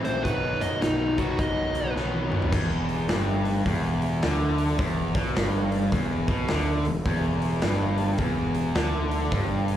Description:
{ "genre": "blues rock power trio and southern rock", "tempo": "106 BPM", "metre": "4/4", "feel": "swing 63% on 8ths", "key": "E minor", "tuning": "A4 = 440 Hz", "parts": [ { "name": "fuzz lead guitar", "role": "melody", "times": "0.0-1.9 s", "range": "D#4 to D#5", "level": "-29 LUFS", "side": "equal", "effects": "distortion, slapback echo, digital delay" }, { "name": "cranked stack guitar", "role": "riff", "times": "0.0-9.8 s", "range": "E2 to E4", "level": "-26 LUFS", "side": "equal", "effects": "overdrive, slapback echo" }, { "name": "growling picked electric bass", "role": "bass", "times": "0.0-9.8 s", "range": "E1 to F#2", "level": "-29 LUFS", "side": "equal", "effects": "overdrive" }, { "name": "big rock drum kit", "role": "drums", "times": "0.0-9.8 s", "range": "crash cymbal, hi-hat, kick drum, snare drum, toms", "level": "-29 LUFS", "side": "equal", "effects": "none" } ], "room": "light reverb", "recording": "live gig heard through the venue's PA, club reverb", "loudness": "-23 LUFS", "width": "side -11 dB against mid", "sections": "0.0-2.5 A section; 2.5-9.8 B section", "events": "drum fill 2.0-2.5", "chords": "0.2 B; 2.5 Em", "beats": "| 0.25 0.82 1.39 1.96 | 2.53 3.09 3.66 4.23 | 4.80 5.36 5.93 6.50 | 7.06 7.63 8.19 8.76 | 9.32" }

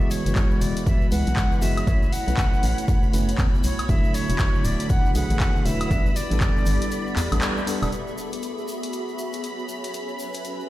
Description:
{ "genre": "deep house", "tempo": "119 BPM", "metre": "4/4", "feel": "swing 60% on 16ths", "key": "F# minor", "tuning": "A4 = 440 Hz", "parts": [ { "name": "bright reedy jazz flute", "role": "melody", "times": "0.0-7.7 s", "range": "C#5 to F#5", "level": "-31 LUFS", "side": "left 1 dB", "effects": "ping-pong delay" }, { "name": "hollow soft pad", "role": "sustained chords", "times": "0.0-10.7 s", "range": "G#3 to E5", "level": "-34 LUFS", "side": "equal", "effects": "ensemble chorus, sidechain pumping" }, { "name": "tine electric piano", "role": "stabs", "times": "0.0-7.9 s", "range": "D3 to C#5", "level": "-29 LUFS", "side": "equal", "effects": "medium stereo tremolo, sidechain pumping, ping-pong delay" }, { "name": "egg shaker", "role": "percussion", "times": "0.0-10.7 s", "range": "none", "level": "-42 LUFS", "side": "equal", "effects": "none" }, { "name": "granular cloud pad", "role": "texture", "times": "0.0-10.7 s", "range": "B3 to D6", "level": "-36 LUFS", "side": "left 1 dB", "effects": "built-in reverb, sidechain pumping" }, { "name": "string machine, violins", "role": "texture", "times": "0.0-10.7 s", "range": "B5", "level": "-39 LUFS", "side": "right 1 dB", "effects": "ensemble chorus, sidechain pumping" }, { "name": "punchy analog drum machine", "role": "drums", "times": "0.1-10.6 s", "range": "handclaps, hi-hat, woodblock", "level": "-31 LUFS", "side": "left 1 dB", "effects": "overdrive" }, { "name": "organ-like FM bass", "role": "bass", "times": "0.3-7.9 s", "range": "D1 to E2", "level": "-24 LUFS", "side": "equal", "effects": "sidechain pumping" }, { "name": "electronic kick drum", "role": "drums", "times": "0.4-6.5 s", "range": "none", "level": "-22 LUFS", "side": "equal", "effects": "none" } ], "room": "light reverb, digital ambience", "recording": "played on a big sound system in a bare room, stone room reverb", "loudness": "-20 LUFS", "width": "side -16 dB against mid", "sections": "0.0-7.9 A section; 7.9-10.7 B section", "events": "break 6.9-7.9; band accent 7.4", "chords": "0.0 F#9sus4; 1.9 B9sus4; 3.9 E9sus4; 5.9 A9sus4; 7.9 F#9sus4; 9.9 B9sus4", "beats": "0.36 0.86 1.37 | 1.87 2.38 2.88 3.39 | 3.89 4.39 4.90 5.40 | 5.91 6.41 6.92 7.42 | 7.92 8.43 8.93 9.44 | 9.94 10.45" }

